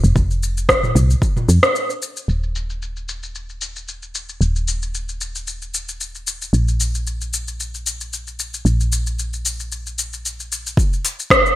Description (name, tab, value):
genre	organic downtempo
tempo	113 BPM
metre	4/4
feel	swing 54% on 16ths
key	unclear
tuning	A4 = 437 Hz
part	woody FM bass	bass	0.0-10.8 s	Eb1 to F2	-20 LUFS	equal	sidechain pumping
part	afro-pop drum kit	drums	0.0-11.6 s	hi-hat, rim click, shaker, toms	-19 LUFS	equal	overdrive, low-pass filter on perc, low-pass filter on snare, low-pass filter on toms, low-pass filter on hats, low-pass filter on room, gated reverb
part	electronic kick drum	drums	0.2-1.3, 10.8-11.4 s	none	-18 LUFS	equal	overdrive
room	light reverb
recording	bright 1980s-style digital production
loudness	-18 LUFS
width	side -15 dB against mid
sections	0.0-2.3 A section; 2.3-10.8 B section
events	break 1.8-2.3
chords	none